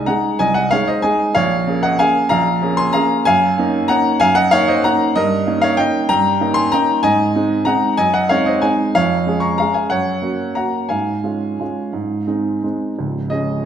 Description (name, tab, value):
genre	classical, piano waltz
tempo	166-200 BPM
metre	3/4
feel	rubato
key	Db major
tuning	A4 = 441 Hz
part	warm baby grand piano	solo	0.0-13.7 s	Db1 to Db6	-14 LUFS	equal	none
room	wet recital hall reverb, RT60 1.7 s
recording	none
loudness	-14 LUFS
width	side -8 dB against mid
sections	0.0-13.0 A section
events	none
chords	0.0 Ab/C; 1.4 Bbm7; 3.3 Ebm7/Gb; 5.1 Eb7/G; 7.0 Ab; 8.0 Ab7/Gb; 9.0 Db/F; 9.9 Gb; 10.9 Db/Ab; 11.9 Ab; 13.0 Db5